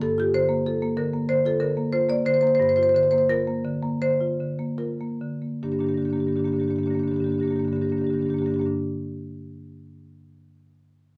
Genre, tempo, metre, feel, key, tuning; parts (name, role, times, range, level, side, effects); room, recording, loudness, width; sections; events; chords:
classical, contemporary piece for solo marimba; 70-95 BPM; 4/4; rubato; G minor; A4 = 440 Hz
marimba with medium hard mallets; solo; 0.0-8.7 s; G2 to D5; -24 LUFS; equal
light reverb; dark, warm production; -24 LUFS; mono
0.0-5.6 A section; 5.6-8.9 B section
slowing down 0.0-5.6
0.0 Gm7; 5.6 Gm